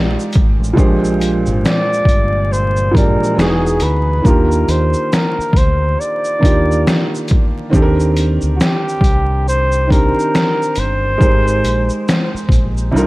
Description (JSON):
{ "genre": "lo-fi hip hop", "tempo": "69 BPM", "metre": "4/4", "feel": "swing 62% on 16ths", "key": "unclear", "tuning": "A4 = 440 Hz", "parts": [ { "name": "mellow flugelhorn", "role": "melody", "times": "0.0-12.5 s", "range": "F4 to D5", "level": "-19 LUFS", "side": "equal", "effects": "low-pass filter, analog delay" }, { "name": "felt-muted upright piano", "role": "accompaniment", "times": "0.0-13.1 s", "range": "Bb2 to D5", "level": "-18 LUFS", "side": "right 1 dB", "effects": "cassette tape, low-pass filter" }, { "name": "deep dub fingered electric bass", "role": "bass", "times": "0.0-13.1 s", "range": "E1 to Eb2", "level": "-17 LUFS", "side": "equal", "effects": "none" }, { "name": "trip hop sampler-style drum kit", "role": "drums", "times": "0.2-13.1 s", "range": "finger snaps, hi-hat, kick drum, shaker, snare drum", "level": "-15 LUFS", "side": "equal", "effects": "none" } ], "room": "little or no reverb", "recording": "vinyl crackle", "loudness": "-12 LUFS", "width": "side -20 dB against mid", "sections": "0.0-13.1 A section", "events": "none", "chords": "0.0 Abmaj7; 0.8 Bb13; 3.4 Emaj9; 4.2 Ebmaj9; 7.7 Cm9; 11.2 Abmaj7" }